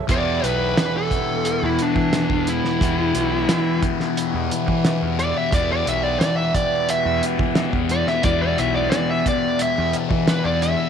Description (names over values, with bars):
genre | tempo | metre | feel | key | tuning
psychedelic rock | 88 BPM | 4/4 | straight | E minor | A4 = 440 Hz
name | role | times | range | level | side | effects
hand-pumped harmonium | sustained chords | 0.0-10.9 s | E3 to B4 | -29 LUFS | right 14 dB | none
fuzz lead guitar | melody | 0.1-10.9 s | D4 to E5 | -23 LUFS | right 2 dB | distortion, tape echo
thick fuzz guitar | riff | 0.1-10.9 s | E2 to E3 | -23 LUFS | left 12 dB | distortion, phaser
fuzz fingered electric bass | bass | 0.1-10.7 s | B1 to E3 | -25 LUFS | right 1 dB | overdrive
cloth-damped thuddy drum kit | drums | 0.1-10.8 s | hi-hat, kick drum, snare drum | -24 LUFS | right 1 dB | none
room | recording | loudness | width
light reverb, small room ambience | 1960s-style stereo with parts hard left and right | -18 LUFS | side -7 dB against mid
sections
0.1-10.9 A section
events
lead electric guitar solo 0.1-10.9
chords
0.1 Em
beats
| 0.10 0.78 1.45 2.13 | 2.81 3.49 4.17 4.85 | 5.53 6.21 6.88 7.56 | 8.24 8.92 9.60 10.28